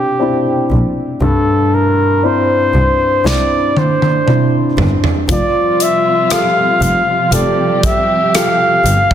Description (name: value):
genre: pop ballad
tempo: 59 BPM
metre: 4/4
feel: straight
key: F major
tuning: A4 = 440 Hz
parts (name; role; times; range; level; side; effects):
- warm flugelhorn; melody; 0.0-9.1 s; G4 to F5; -14 LUFS; right 1 dB; none
- warm grand piano; accompaniment; 0.0-9.1 s; G2 to A4; -16 LUFS; left 2 dB; none
- rich double bass; bass; 0.7-8.9 s; F1 to C2; -16 LUFS; equal; none
- modern studio drum kit; drums; 3.3-9.1 s; hi-hat, kick drum, rim click, snare drum, toms; -16 LUFS; right 1 dB; soft clipping on snare
- muted studio string section; sustained chords; 5.3-9.1 s; C3 to G4; -19 LUFS; right 1 dB; none
room: moderate concert hall reverb, RT60 2.0 s, small room ambience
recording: dense, heavily limited modern master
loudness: -11 LUFS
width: side -10 dB against mid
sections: 0.0-9.1 A section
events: drum fill 3.3-5.3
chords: 0.0 Cadd9; 5.3 Fadd9